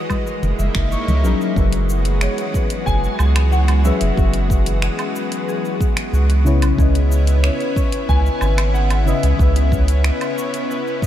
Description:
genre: sunset chillout.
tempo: 92 BPM.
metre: 4/4.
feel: straight.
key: unclear.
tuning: A4 = 440 Hz.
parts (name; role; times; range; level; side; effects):
mellow FM electric piano; accompaniment; 0.0-11.1 s; C#3 to E5; -24 LUFS; moving between left 7 dB and right 2 dB; chorus, phaser, auto-pan, ping-pong delay.
lush unison pad; sustained chords; 0.0-11.1 s; E3 to D#5; -26 LUFS; left 1 dB; chorus, vintage 12-bit sampler grit.
concert harp; arpeggios; 0.0-11.1 s; F#4 to E5; -29 LUFS; left 3 dB; ping-pong delay.
deep house drum kit; drums; 0.1-11.1 s; finger snaps, hi-hat, shaker, woodblock; -29 LUFS; right 1 dB; small room ambience.
electronic kick drum; drums; 0.1-11.1 s; none; -19 LUFS; equal; small room ambience.
congas; percussion; 0.1-1.2 s; none; -30 LUFS; left 2 dB; none.
round analog bass; bass; 0.4-10.1 s; F#1 to C#2; -16 LUFS; equal; none.
warm baby grand piano; melody; 2.2-9.7 s; C#5 to G#5; -28 LUFS; equal; ensemble chorus, ping-pong delay.
room: light reverb.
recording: none.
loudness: -15 LUFS.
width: side -11 dB against mid.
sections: 0.0-1.6 A section; 1.6-11.1 B section.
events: kick drops out 0.9-1.6.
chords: 0.3 F#13; 1.6 F#9sus4; 6.5 C#m9.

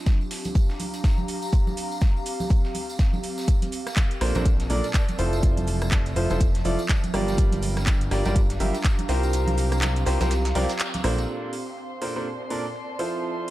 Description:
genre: piano house.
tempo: 123 BPM.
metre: 4/4.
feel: swing 59% on 16ths.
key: unclear.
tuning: A4 = 437 Hz.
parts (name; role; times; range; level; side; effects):
airy breathy pad; texture; 0.0-13.5 s; F3 to Bb5; -32 LUFS; equal; chorus, sidechain pumping.
dusty soul sampler-style drum kit; drums; 0.1-13.5 s; hi-hat, shaker, snare drum; -39 LUFS; right 1 dB; overdrive, sidechain pumping on perc, high-pass filter on perc, low-pass filter on perc, sidechain pumping on hats, high-pass filter on hats, low-pass filter on hats, high-pass filter on snare, low-pass filter on snare, high-pass filter on room, low-pass filter on room.
electronic kick drum; drums; 0.1-9.0 s; none; -21 LUFS; equal; none.
congas and tambourine; percussion; 0.1-11.3 s; none; -34 LUFS; right 3 dB; none.
house drum kit; drums; 0.3-13.5 s; handclaps, hi-hat, rim click; -32 LUFS; right 1 dB; none.
clear upright piano; riff; 4.2-13.5 s; Bb2 to E5; -28 LUFS; right 1 dB; sidechain pumping, tape echo.
fat analog bass; bass; 4.2-11.3 s; F1 to C2; -25 LUFS; equal; sidechain pumping.
warm studio violin section; sustained chords; 11.3-13.5 s; C5 to C6; -37 LUFS; right 1 dB; vintage 12-bit sampler grit, sidechain pumping.
room: digital ambience.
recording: dark, warm production.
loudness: -22 LUFS.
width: side -16 dB against mid.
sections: 0.0-11.3 A section; 11.3-13.5 B section.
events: kick drops out 9.3-11.3; band accent 10.8.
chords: 0.0 C7sus4; 3.5 Bbmaj9; 5.2 Fmaj7; 7.4 Gm7; 9.3 Bbmaj9; 13.0 Fmaj7.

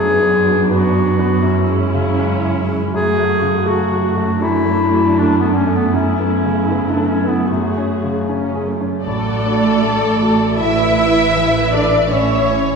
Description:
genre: cinematic, emotional film score for orchestra.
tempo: 79 BPM.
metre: 4/4.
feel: rubato.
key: F# minor, A major from 9.1 s.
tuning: A4 = 442 Hz.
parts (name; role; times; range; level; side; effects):
bright clarinet; second line; 0.0-8.7 s; A3 to G#4; -17 LUFS; left 2 dB; none.
clear baby grand piano; accompaniment; 0.0-12.8 s; F#2 to A4; -21 LUFS; left 2 dB; none.
warm symphonic viola section; accompaniment; 0.0-12.8 s; A3 to E5; -22 LUFS; right 2 dB; none.
dark symphonic cello section; bass; 0.0-12.8 s; F#2 to E4; -19 LUFS; right 4 dB; none.
warm symphonic violin section; melody; 9.0-12.8 s; A4 to E5; -20 LUFS; left 3 dB; none.
warm symphonic violin section; second line; 9.1-12.8 s; A4 to E5; -21 LUFS; left 2 dB; none.
warm symphonic double bass section; bass; 9.1-12.8 s; A1; -23 LUFS; right 3 dB; none.
room: wet concert hall reverb, RT60 1.9 s.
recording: recorded in a church or concert hall.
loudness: -13 LUFS.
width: side -5 dB against mid.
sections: 0.0-9.1 A section; 9.1-12.8 B section.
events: none.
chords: 0.0 Bm/F#; 1.4 C#m/F#; 2.9 F#m; 4.4 D/F#; 5.9 Aadd9/F#; 7.5 F#madd9; 9.1 D/A; 10.6 Asus2; 12.1 N.C..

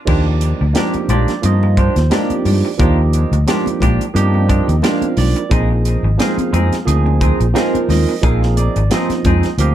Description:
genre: electric jazz fusion.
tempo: 88 BPM.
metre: 4/4.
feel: swing 55% on 16ths.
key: unclear.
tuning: A4 = 439 Hz.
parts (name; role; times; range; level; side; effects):
barky tine electric piano; accompaniment; 0.1-9.7 s; F3 to F5; -19 LUFS; right 6 dB; phaser.
semi-hollow electric guitar; stabs; 0.1-9.7 s; F3 to Ab4; -23 LUFS; equal; wide subtle chorus, tape echo.
fingered electric bass; bass; 0.1-9.7 s; Ab1 to G2; -15 LUFS; equal; none.
crisp fusion drum kit; drums; 0.1-9.7 s; crash cymbal, hi-hat, kick drum, snare drum; -19 LUFS; equal; none.
congas; percussion; 0.8-9.4 s; none; -24 LUFS; left 6 dB; none.
room: light reverb.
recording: dark, warm production.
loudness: -13 LUFS.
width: side -11 dB against mid.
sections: 0.1-9.7 A section.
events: none.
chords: 0.1 Ebmaj9; 5.5 Bb9sus4.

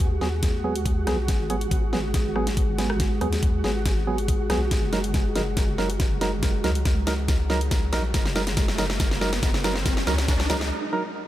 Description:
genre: deep dubstep.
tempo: 140 BPM.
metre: 4/4.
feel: half-time.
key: unclear.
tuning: A4 = 442 Hz.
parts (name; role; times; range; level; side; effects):
dark analog pad; sustained chords; 0.0-10.7 s; G#3 to G#4; -32 LUFS; equal; chorus.
deep soft wobble bass; bass; 0.0-10.7 s; F#1 to D#2; -27 LUFS; equal; chorus.
dubstep drum kit; drums; 0.0-10.7 s; hi-hat, rim click, snare drum; -30 LUFS; equal; high-pass filter on hats, studio reverb, high-pass filter on snare, high-pass filter on toms.
electronic kick drum; drums; 0.0-10.4 s; none; -24 LUFS; equal; studio reverb.
flickering grainy texture; texture; 0.0-10.7 s; F#4; -35 LUFS; right 3 dB; built-in reverb.
percussive organ stab; stabs; 0.2-11.0 s; F#3 to A#4; -29 LUFS; right 2 dB; chorus, dub echo.
riser; sound effects; 7.0-10.7 s; none; -33 LUFS; equal; none.
room: light reverb.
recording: none.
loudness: -21 LUFS.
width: side -14 dB against mid.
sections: 0.0-11.3 A section.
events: build-up 0.0-11.3; drum fill 0.0-10.7; filter sweep on synth stab 0.0-11.3; riser 7.0-10.7; break 10.7-11.3.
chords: 0.0 G#m7; 4.7 F#6.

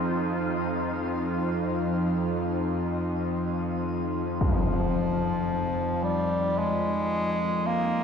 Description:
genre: dark ambient drone.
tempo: free time.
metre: none.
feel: none.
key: F minor.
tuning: A4 = 438 Hz.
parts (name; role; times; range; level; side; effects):
deep dark ambient pad; sustained chords; 0.0-8.0 s; Eb4 to C5; -32 LUFS; equal; chorus, built-in reverb, shimmer reverb.
bowed-like drone; drone; 0.0-8.0 s; F2; -28 LUFS; left 1 dB; built-in reverb.
clear bass clarinet; melody; 4.4-8.0 s; F3 to Bb3; -27 LUFS; equal; shimmer reverb, diffuse ambient delay.
impact; percussion; 4.4-4.6 s; none; -30 LUFS; equal; low-pass filter on sfx.
room: wet cathedral reverb, RT60 4.8 s.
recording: none.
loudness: -25 LUFS.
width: side -6 dB against mid.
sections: 0.0-8.0 A section.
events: none.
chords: 0.0 F5.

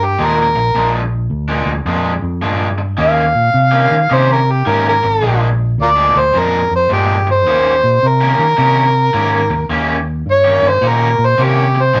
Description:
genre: electric blues shuffle.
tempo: 107 BPM.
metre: 4/4.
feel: swing 65% on 8ths.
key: unclear.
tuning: A4 = 440 Hz.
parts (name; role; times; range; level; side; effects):
overdriven harmonica; melody; 0.0-12.0 s; F4 to F5; -15 LUFS; equal; none.
fingered electric bass; bass; 0.0-12.0 s; Ab1 to Eb3; -19 LUFS; equal; none.
overdriven semi-hollow guitar; riff; 0.2-12.0 s; Bb2 to G4; -21 LUFS; equal; none.
room: moderate small room reverb, RT60 0.6 s.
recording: none.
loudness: -14 LUFS.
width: mono.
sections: 0.0-12.0 A section.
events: harmonica solo 0.0-12.0.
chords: 0.0 Bb7; 3.0 Eb7; 5.2 Bb7; 7.5 Eb7.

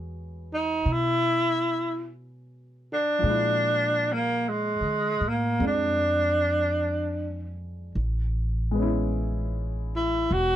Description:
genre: jazz ballad.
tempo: 51 BPM.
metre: 4/4.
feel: swing 68% on 8ths.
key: unclear.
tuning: A4 = 444 Hz.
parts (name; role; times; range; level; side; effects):
warm baby grand piano; accompaniment; 0.0-10.6 s; E#3 to E4; -32 LUFS; left 1 dB; none.
upright bass; bass; 0.0-10.6 s; E1 to D3; -29 LUFS; equal; none.
breathy tenor saxophone; melody; 0.5-10.6 s; G#3 to F#4; -24 LUFS; equal; none.
room: little or no reverb.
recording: close, detailed microphones.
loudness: -23 LUFS.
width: side -11 dB against mid.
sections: 0.0-10.6 A section.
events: none.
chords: 0.0 E; 3.2 A#7#11; 8.0 Amaj9.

